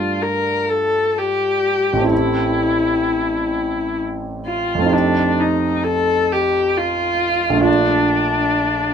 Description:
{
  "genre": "classical, impressionist duo for viola and grand piano",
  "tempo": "43 BPM (dotted quarters)",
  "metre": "6/8",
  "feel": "rubato",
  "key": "unclear",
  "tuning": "A4 = 440 Hz",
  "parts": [
    { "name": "rich viola", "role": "melody", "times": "0.0-8.9 s", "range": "D4 to Bb4", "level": "-18 LUFS", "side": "left 3 dB", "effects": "none" },
    { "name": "clear concert grand piano", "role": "accompaniment", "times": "0.0-8.9 s", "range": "A1 to G4", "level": "-20 LUFS", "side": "right 3 dB", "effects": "none" }
  ],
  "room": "moderate studio ambience, RT60 0.5 s",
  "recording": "minimal, uncompressed stereo recording",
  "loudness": "-16 LUFS",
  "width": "side -7 dB against mid",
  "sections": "0.0-8.9 A section",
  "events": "none",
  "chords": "0.0 Gsus2; 2.1 Am7; 4.9 F9; 7.7 Bbmaj7"
}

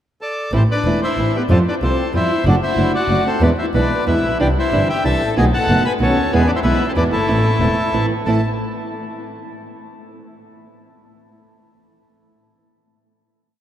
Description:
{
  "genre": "tango",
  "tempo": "187 BPM",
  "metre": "3/4",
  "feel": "rubato",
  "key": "A minor",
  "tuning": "A4 = 440 Hz",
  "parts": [
    { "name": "bandoneon", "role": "melody", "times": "0.2-8.4 s", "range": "E4 to B5", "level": "-21 LUFS", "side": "left 1 dB", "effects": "none" },
    { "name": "nylon-string guitar", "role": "accompaniment", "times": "0.5-8.4 s", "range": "A2 to F#4", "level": "-20 LUFS", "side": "right 1 dB", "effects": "none" },
    { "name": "clear double bass", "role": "bass", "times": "0.5-8.4 s", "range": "E1 to F2", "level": "-19 LUFS", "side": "equal", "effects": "none" },
    { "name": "warm symphonic violin section", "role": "second line", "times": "0.6-8.4 s", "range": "A3 to A5", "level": "-24 LUFS", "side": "left 2 dB", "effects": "none" }
  ],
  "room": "wet cathedral reverb, RT60 5.7 s",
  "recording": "in a vast, echoing space",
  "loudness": "-15 LUFS",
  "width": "side -11 dB against mid",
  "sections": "0.0-0.5 pickup bar; 0.5-8.3 A section; 8.3-9.2 final chord",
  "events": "none",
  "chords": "0.0 N.C.; 0.5 Am; 1.5 Fadd9; 2.5 D/F#; 3.4 E; 4.4 Cadd9; 5.4 B7; 6.3 E; 7.3 Am"
}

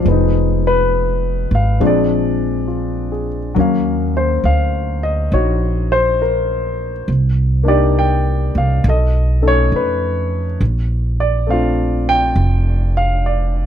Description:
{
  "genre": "jazz ballad",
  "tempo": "68 BPM",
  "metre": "4/4",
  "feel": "swing 66% on 8ths",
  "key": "unclear",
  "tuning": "A4 = 440 Hz",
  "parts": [
    { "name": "warm concert grand piano", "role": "accompaniment", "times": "0.0-13.7 s", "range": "F3 to G5", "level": "-17 LUFS", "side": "left 2 dB", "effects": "none" },
    { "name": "upright bass", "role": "bass", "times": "0.1-13.7 s", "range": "F1 to F2", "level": "-17 LUFS", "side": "right 1 dB", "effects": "none" }
  ],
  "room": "little or no reverb",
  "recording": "close, detailed microphones",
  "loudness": "-14 LUFS",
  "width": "side -9 dB against mid",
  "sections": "0.0-13.7 A section",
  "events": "none",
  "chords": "0.0 Fm7b5; 1.8 Bb7; 3.6 Ebm9; 7.1 Cm9; 8.8 B9; 10.6 Bbmaj9"
}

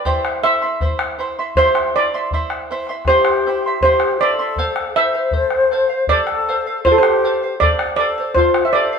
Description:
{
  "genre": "andean folk, Andean ensemble",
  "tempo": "80 BPM",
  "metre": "3/4",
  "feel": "straight",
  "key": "unclear",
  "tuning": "A4 = 441 Hz",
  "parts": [
    { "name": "steel pan", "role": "melody", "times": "0.0-9.0 s", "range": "A4 to E5", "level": "-16 LUFS", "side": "right 2 dB", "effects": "none" },
    { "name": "charango", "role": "accompaniment", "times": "0.0-9.0 s", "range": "E4 to C6", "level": "-24 LUFS", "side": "right 2 dB", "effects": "none" },
    { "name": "bombo", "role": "percussion", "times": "0.1-8.7 s", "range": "none", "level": "-24 LUFS", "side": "left 2 dB", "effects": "none" },
    { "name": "large quena", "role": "second line", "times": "3.1-9.0 s", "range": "F4 to C5", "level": "-20 LUFS", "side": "left 5 dB", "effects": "none" }
  ],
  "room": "wet stone room reverb, RT60 1.1 s",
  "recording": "band playing live in one room",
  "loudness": "-14 LUFS",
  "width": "side -6 dB against mid",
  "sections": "0.0-9.0 A section",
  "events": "none",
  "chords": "0.1 C; 4.6 F"
}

